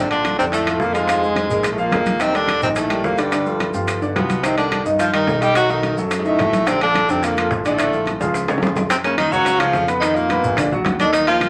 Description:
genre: Afro-Cuban jazz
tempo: 215 BPM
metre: 4/4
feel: straight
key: Bb major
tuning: A4 = 440 Hz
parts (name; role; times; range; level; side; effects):
- clear tenor saxophone; melody; 0.0-11.5 s; G3 to G4; -23 LUFS; equal; none
- breathy baritone saxophone; second line; 0.0-11.5 s; G2 to G3; -26 LUFS; equal; none
- clear grand piano; accompaniment; 0.0-11.5 s; Db3 to Db6; -24 LUFS; equal; none
- dark concert grand piano; bass; 0.0-11.5 s; G1 to G2; -30 LUFS; equal; none
- congas; percussion; 0.1-11.5 s; none; -32 LUFS; equal; none
- maracas; percussion; 0.1-11.5 s; none; -42 LUFS; equal; none
- timbales; percussion; 0.1-11.5 s; none; -28 LUFS; equal; none
- bongos; percussion; 0.2-11.5 s; none; -30 LUFS; equal; none
- claves; percussion; 0.2-11.5 s; none; -40 LUFS; equal; none
room: wet club reverb, RT60 0.6 s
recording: vinyl crackle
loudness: -18 LUFS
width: mono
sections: 0.0-8.9 A section; 8.9-11.5 B section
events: drum fill 8.2-8.9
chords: 0.0 Bbmaj7; 1.1 Fm; 1.6 Bb5; 2.2 Ebmaj7#11; 3.3 Dm; 3.9 G7; 4.4 Cm9; 5.6 B7; 6.7 Bbmaj7; 8.3 Db; 8.9 Gb; 10.0 Bmaj7#11; 10.6 Bbaug

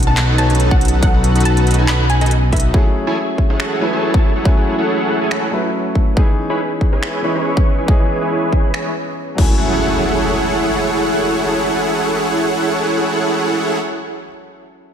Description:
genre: future bass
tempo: 140 BPM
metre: 4/4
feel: swing 54% on 16ths, half-time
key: F# dorian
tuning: A4 = 441 Hz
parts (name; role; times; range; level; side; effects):
- warm concert grand piano; accompaniment; 0.0-14.9 s; E3 to G#5; -23 LUFS; left 1 dB; sidechain pumping, analog delay
- fat analog bass; bass; 0.0-2.7 s; B1; -15 LUFS; equal; sidechain pumping
- trap drum kit; drums; 0.0-9.5 s; crash cymbal, finger snaps, handclaps, hi-hat; -24 LUFS; equal; none
- wide unison pluck; melody; 0.1-2.7 s; E5 to B5; -23 LUFS; right 1 dB; sidechain pumping, diffuse ambient delay
- dense compressed supersaw; riff; 0.1-13.8 s; D#4 to C#6; -18 LUFS; right 1 dB; sidechain pumping, low-pass filter, analog delay
- electronic kick drum; drums; 0.7-9.5 s; none; -14 LUFS; equal; none
- impact; sound effects; 9.4-14.3 s; none; -25 LUFS; equal; none
room: moderate lush hall reverb, RT60 1.8 s, digital ambience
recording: dreamy mix soaked in reverb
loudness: -14 LUFS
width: side -8 dB against mid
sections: 0.0-9.6 A section; 9.6-13.0 B section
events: filter sweep on supersaw synth 0.0-9.6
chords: 0.0 B7; 2.7 F#m9; 6.2 C#m7; 9.4 F#m9

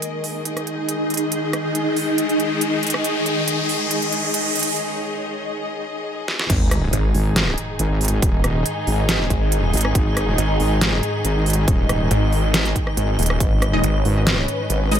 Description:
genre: heavy wobble dubstep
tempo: 139 BPM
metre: 4/4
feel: half-time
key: unclear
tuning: A4 = 440 Hz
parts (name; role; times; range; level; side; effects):
- rich studio string section; sustained chords; 0.0-15.0 s; G#2 to D#5; -25 LUFS; equal; vintage 12-bit sampler grit, sidechain pumping, low-pass filter
- dubstep drum kit; drums; 0.0-15.0 s; crash cymbal, hi-hat, rim click, snare drum; -23 LUFS; right 1 dB; none
- riser and sub drop; sound effects; 0.9-8.2 s; none; -26 LUFS; left 1 dB; none
- granular cloud pad; texture; 0.0-15.0 s; D#4 to D#5; -26 LUFS; equal; built-in reverb, sidechain pumping
- wobble bass; bass; 6.5-15.0 s; D#1 to G#1; -20 LUFS; equal; chorus, overdrive
- electronic kick drum; drums; 6.5-13.5 s; none; -20 LUFS; equal; none
- snarling distorted saw bass; bass; 6.9-14.0 s; D#1 to G#1; -19 LUFS; equal; distortion, overdrive
- orchestra-hit-like synth stab; stabs; 13.7-15.0 s; G#3 to D#5; -24 LUFS; left 1 dB; built-in reverb, dub echo
room: light reverb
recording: high-pass filter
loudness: -18 LUFS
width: side -9 dB against mid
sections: 0.0-6.5 A section; 6.5-15.0 B section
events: build-up 0.0-6.5; riser 0.9-4.8; break 4.8-6.5; drum fill 6.3; drop 6.5-15.0; impact 6.5-8.2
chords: 0.0 G#5

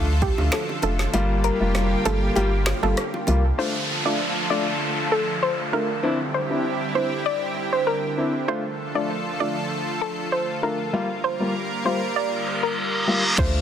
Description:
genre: dancehall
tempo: 98 BPM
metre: 4/4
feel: straight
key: D minor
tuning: A4 = 438 Hz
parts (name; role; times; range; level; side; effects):
- dark grand piano; accompaniment; 0.0-13.6 s; G3 to F4; -26 LUFS; left 2 dB; sidechain pumping
- lush unison pad; sustained chords; 0.0-13.6 s; D3 to Bb4; -28 LUFS; right 1 dB; chorus, sidechain pumping
- sub bass with octave; bass; 0.0-3.5, 13.4-13.6 s; F1 to D2; -22 LUFS; equal; none
- soft round pluck; melody; 0.2-13.6 s; G4 to D5; -26 LUFS; equal; chorus, tape echo
- deep house drum kit; drums; 0.2-3.4, 13.4-13.5 s; crash cymbal, finger snaps, hi-hat, kick drum, rim click, snare drum; -26 LUFS; equal; soft clipping on snare
- bongos; percussion; 0.4-3.4, 13.4-13.5 s; none; -32 LUFS; right 3 dB; none
- downlifter and reverse cymbal; sound effects; 3.6-8.5, 12.4-13.4 s; none; -26 LUFS; equal; none
room: light reverb, digital ambience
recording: dense, heavily limited modern master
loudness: -21 LUFS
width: side -9 dB against mid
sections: 0.0-3.6 A section; 3.6-13.4 B section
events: kick muted 1.1-3.6; reverse cymbal 12.4-13.4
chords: 0.0 Dm; 1.1 Gm7; 3.6 Dm; 6.0 Cadd9; 8.5 Dm; 10.9 Gm7

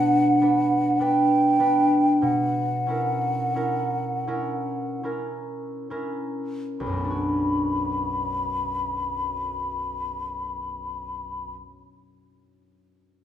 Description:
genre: classical, romantic duo for flute and harp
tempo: 32-54 BPM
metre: 3/4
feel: rubato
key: B minor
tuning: A4 = 440 Hz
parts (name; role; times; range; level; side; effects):
- mellow hollow concert flute; melody; 0.0-11.5 s; F#5 to B5; -25 LUFS; equal; none
- concert harp; accompaniment; 0.0-11.8 s; B1 to B4; -25 LUFS; equal; none
room: wet recital hall reverb, RT60 1.5 s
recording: minimal, uncompressed stereo recording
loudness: -22 LUFS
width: side -10 dB against mid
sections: 0.0-6.8 A section; 6.8-11.9 B section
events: slowing down 0.0-6.8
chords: 0.0 Bm; 2.2 F#7/B; 6.8 Bm

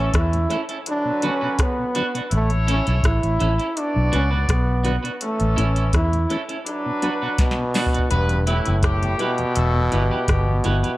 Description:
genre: roots reggae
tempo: 83 BPM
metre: 4/4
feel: straight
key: E dorian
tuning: A4 = 440 Hz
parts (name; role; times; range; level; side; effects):
- clear trombone; melody; 0.0-11.0 s; G2 to E4; -24 LUFS; equal; dub echo
- clear horn section; second line; 0.0-10.6 s; D3 to D5; -29 LUFS; left 1 dB; dub echo
- clean electric guitar; accompaniment; 0.0-10.9 s; C#4 to B4; -29 LUFS; right 4 dB; spring reverb, dub echo
- vintage muted fingered electric bass; bass; 0.0-10.8 s; E1 to E2; -20 LUFS; equal; none
- soft vintage rhythm box; drums; 0.1-11.0 s; hi-hat, kick drum, rim click, snare drum, toms; -22 LUFS; equal; tape echo
- mellow tonewheel organ; accompaniment; 0.3-10.9 s; E2 to E4; -30 LUFS; left 2 dB; overdrive, chorus vibrato, slow rotary speaker
room: light reverb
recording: none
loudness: -18 LUFS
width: side -17 dB against mid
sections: 0.0-8.1 A section; 8.1-11.0 B section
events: drum fill 7.4-8.1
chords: 0.0 A; 0.9 Bm; 2.3 A; 3.8 Bm; 5.2 A; 6.7 Bm; 8.1 Em

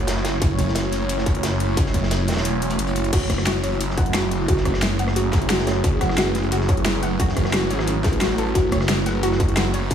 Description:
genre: dark technical drum and bass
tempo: 177 BPM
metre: 4/4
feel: straight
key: F# minor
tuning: A4 = 440 Hz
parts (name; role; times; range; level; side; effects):
- swarming drone; sustained chords; 0.0-9.9 s; F#3 to C#5; -28 LUFS; right 2 dB; built-in reverb, sidechain pumping
- snarling distorted saw bass; bass; 0.0-9.9 s; E1 to A1; -24 LUFS; equal; distortion, tube saturation, sidechain pumping
- granular cloud pad; texture; 0.0-9.9 s; A3 to C#5; -27 LUFS; right 1 dB; built-in reverb, sidechain pumping
- crunchy breakbeat drum kit; drums; 0.1-9.9 s; hi-hat, snare drum; -32 LUFS; right 1 dB; high-pass filter on hats, small room ambience, high-pass filter on snare, high-pass filter on room
- dubstep drum kit; drums; 0.1-9.9 s; crash cymbal, hi-hat, rim click, snare drum; -26 LUFS; equal; small room ambience
- electronic kick drum; drums; 0.4-9.9 s; none; -23 LUFS; equal; distortion, small room ambience
- soft round pluck; arpeggios; 3.1-9.8 s; F#4 to F#5; -26 LUFS; left 2 dB; wide subtle chorus, sidechain pumping, tape echo
room: moderate lush hall reverb, RT60 2.4 s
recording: small room reverb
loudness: -18 LUFS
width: side -9 dB against mid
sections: 0.0-9.9 A section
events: kick drops out 2.5-3.1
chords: 0.0 F#m

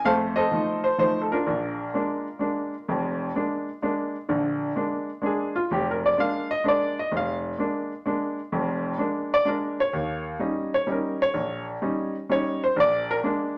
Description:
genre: jazz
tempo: 128 BPM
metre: 3/4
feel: swing 68% on 8ths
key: Bb mixolydian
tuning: A4 = 440 Hz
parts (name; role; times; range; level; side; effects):
- clear baby grand piano; solo; 0.0-13.6 s; F1 to F5; -26 LUFS; equal; none
room: wet club reverb, RT60 0.7 s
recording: none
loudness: -26 LUFS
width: mono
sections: 0.0-4.3 A section; 4.3-13.6 B section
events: grand piano solo 4.3-13.6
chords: 0.0 F7; 1.5 Bb7; 9.9 Eb7; 12.7 Bb7

